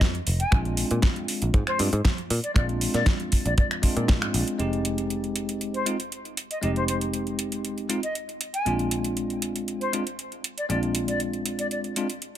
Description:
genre	nu-disco, nu disco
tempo	118 BPM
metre	4/4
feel	straight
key	F dorian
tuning	A4 = 441 Hz
part	picked electric bass	bass	0.0-12.4 s	F1 to Bb2	-28 LUFS	equal	none
part	kick drum	drums	0.0-4.2 s	none	-22 LUFS	equal	none
part	pop drum kit	drums	0.0-12.4 s	finger snaps, hi-hat, snare drum	-30 LUFS	right 1 dB	overdrive
part	silver concert flute	melody	0.4-11.8 s	C5 to Ab5	-32 LUFS	left 1 dB	dub echo
part	bell-like tine electric piano	accompaniment	0.5-12.1 s	Ab3 to G4	-29 LUFS	equal	fast stereo tremolo, sidechain pumping, dub echo
room	studio reverb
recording	none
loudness	-23 LUFS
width	side -11 dB against mid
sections	0.0-4.6 A section; 4.6-12.4 B section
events	none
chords	0.0 Fm; 0.5 Bb7; 4.6 Fm7; 8.7 Bb7

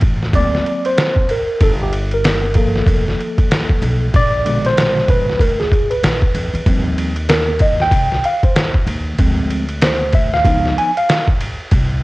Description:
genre	hip hop, jazz-hop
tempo	95 BPM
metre	4/4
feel	swing 60% on 16ths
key	unclear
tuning	A4 = 439 Hz
part	upright bass	bass	0.0-12.0 s	F1 to F2	-20 LUFS	equal	none
part	trip hop sampler-style drum kit	drums	0.0-11.9 s	hi-hat, kick drum, ride cymbal, snare drum	-16 LUFS	equal	cassette tape
part	tine electric piano	accompaniment	0.3-11.3 s	Cb3 to Ab5	-18 LUFS	equal	overdrive, fast stereo tremolo, cassette tape
room	light reverb, digital ambience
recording	home recording on cassette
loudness	-13 LUFS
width	side -20 dB against mid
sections	0.0-12.0 A section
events	tine electric piano solo 0.0-12.0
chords	0.3 Daug7; 1.6 Gm9; 4.1 Bb7b9; 6.7 Eb69; 9.2 Dm7b5; 10.4 Db9

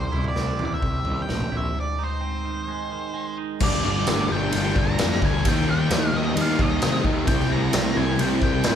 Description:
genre	quiet-loud alternative rock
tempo	130 BPM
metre	4/4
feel	straight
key	G phrygian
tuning	A4 = 440 Hz
part	octave-fuzz lead guitar	melody	0.0-8.8 s	C5 to Bb5	-29 LUFS	equal	distortion
part	twangy electric guitar	arpeggios	0.0-3.6 s	Ab2 to E4	-32 LUFS	right 7 dB	phaser
part	fuzz picked electric bass	bass	0.0-8.8 s	G1 to C3	-26 LUFS	equal	overdrive
part	raw garage drum kit	drums	0.1-8.8 s	crash cymbal, kick drum, ride cymbal, snare drum, toms	-24 LUFS	equal	none
part	ensemble organ-string	sustained chords	3.6-8.8 s	D4 to G5	-35 LUFS	left 1 dB	none
part	fuzz guitar	riff	3.6-8.8 s	G2 to E4	-26 LUFS	left 8 dB	distortion
part	sludgy distorted guitar	riff	3.6-8.8 s	G2 to E4	-28 LUFS	right 6 dB	overdrive
room	light reverb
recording	band playing live in one room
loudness	-20 LUFS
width	side -9 dB against mid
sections	0.0-3.6 A section; 3.6-8.8 B section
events	break 1.8-3.6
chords	0.0 C; 1.8 Ab; 3.6 Gm; 5.5 Eb; 7.3 C

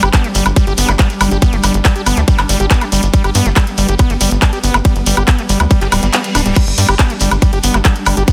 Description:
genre	psychedelic trance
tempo	140 BPM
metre	4/4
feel	straight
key	G major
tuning	A4 = 440 Hz
part	pulsing gated texture	sustained chords	0.0-8.3 s	G3 to D4	-25 LUFS	equal	chorus, built-in reverb, sidechain pumping
part	overdriven acid bass	riff	0.0-8.3 s	G3 to G4	-22 LUFS	equal	distortion, sidechain pumping, delay
part	tight sequencer bass	bass	0.0-8.2 s	D1 to G2	-17 LUFS	equal	none
part	garage drum kit	drums	0.0-8.3 s	crash cymbal, handclaps, hi-hat, ride cymbal, woodblock	-19 LUFS	equal	none
part	shekere	percussion	0.0-8.3 s	none	-28 LUFS	equal	none
part	electronic kick drum	drums	0.1-8.3 s	none	-13 LUFS	equal	none
part	reverse cymbal	sound effects	5.9-6.6 s	none	-28 LUFS	equal	none
room	light reverb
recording	dense, heavily limited modern master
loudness	-13 LUFS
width	mono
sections	0.0-8.3 A section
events	reverse cymbal 5.9-6.6; kick drops out 6.1-6.6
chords	0.0 G5

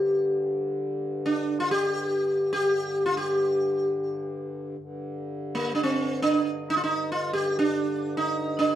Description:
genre	indian classical, Hindustani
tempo	free time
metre	none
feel	none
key	unclear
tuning	A4 = 440 Hz
part	sitar	melody	0.0-8.8 s	Bb3 to G4	-24 LUFS	equal	plate reverb
part	pedal harmonium	drone	0.0-8.8 s	G2 to D3	-35 LUFS	left 2 dB	none
room	wet small room ambience, RT60 0.5 s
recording	heard from further back in the room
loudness	-24 LUFS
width	side -11 dB against mid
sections	0.0-8.8 A section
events	none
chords	none

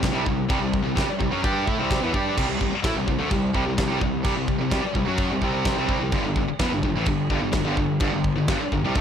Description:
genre	heavy metal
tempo	128 BPM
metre	4/4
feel	straight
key	unclear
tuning	A4 = 440 Hz
part	heavy high-gain guitar	riff	0.0-9.0 s	G2 to G4	-26 LUFS	left 9 dB	distortion
part	tight distorted guitar	riff	0.0-9.0 s	G2 to G4	-27 LUFS	right 10 dB	distortion
part	fuzz picked electric bass	bass	0.0-9.0 s	G1 to A2	-30 LUFS	equal	overdrive
part	big rock drum kit	drums	0.0-9.0 s	china cymbal, crash cymbal, kick drum, snare drum	-26 LUFS	equal	none
room	little or no reverb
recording	none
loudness	-21 LUFS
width	side -8 dB against mid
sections	0.0-9.0 A section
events	none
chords	0.0 C5; 6.1 G5

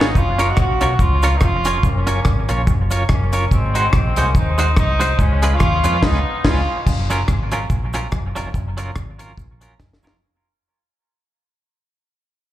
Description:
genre	ska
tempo	143 BPM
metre	4/4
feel	swing 57% on 8ths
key	F# major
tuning	A4 = 440 Hz
part	warm horn section	melody	0.0-6.8 s	G#3 to F#4	-22 LUFS	equal	dub echo, slapback echo
part	semi-hollow electric guitar	accompaniment	0.0-10.2 s	F#3 to C#5	-23 LUFS	right 2 dB	tremolo, dub echo, slapback echo
part	deep dub fingered electric bass	bass	0.0-10.2 s	E#1 to E#2	-19 LUFS	equal	none
part	deep reggae drum kit	drums	0.0-10.2 s	crash cymbal, hi-hat, kick drum, rim click, snare drum	-19 LUFS	equal	none
part	cabasa	percussion	0.2-10.1 s	none	-41 LUFS	left 2 dB	none
room	light reverb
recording	live gig heard through the venue's PA, club reverb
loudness	-15 LUFS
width	side -13 dB against mid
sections	0.0-6.9 A section; 6.9-10.2 B section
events	drum fill 0.0, 9.8-10.2; band accent 6.0-6.9; fade-out 6.9-10.2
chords	0.2 F#maj7; 3.5 G#7; 5.2 C#7; 6.9 F#maj7

